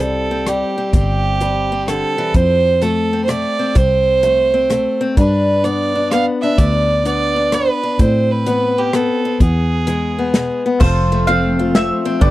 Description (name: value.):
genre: honky-tonk and classic country.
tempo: 128 BPM.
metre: 3/4.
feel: swing 65% on 8ths.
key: unclear.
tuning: A4 = 440 Hz.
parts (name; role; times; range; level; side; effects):
clear fiddle; second line; 0.0-10.6 s; G4 to F5; -18 LUFS; right 4 dB; none.
picked steel-string acoustic guitar; accompaniment; 0.0-12.3 s; E2 to F4; -19 LUFS; left 3 dB; none.
fingered electric bass; bass; 0.0-12.3 s; F1 to A2; -19 LUFS; equal; none.
natural country drum kit; drums; 0.0-12.3 s; crash cymbal, hi-hat, kick drum, ride cymbal, rim click, snare drum; -15 LUFS; equal; none.
mandolin; melody; 10.8-12.3 s; C5 to F5; -19 LUFS; right 1 dB; none.
clear grand piano; accompaniment; 10.8-12.3 s; D4 to C5; -28 LUFS; right 2 dB; none.
pedal steel guitar; sustained chords; 10.8-12.3 s; D4 to C5; -28 LUFS; equal; none.
warm symphonic string section; sustained chords; 10.8-12.3 s; D3 to C4; -21 LUFS; right 1 dB; none.
room: little or no reverb.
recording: dry, close 1970s-style studio recording.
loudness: -13 LUFS.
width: side -16 dB against mid.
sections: 0.0-10.8 A section; 10.8-12.3 B section.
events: fiddle solo 0.0-10.8.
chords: 0.0 C; 2.3 F; 5.2 G; 8.0 Amadd9; 9.4 E; 10.8 F.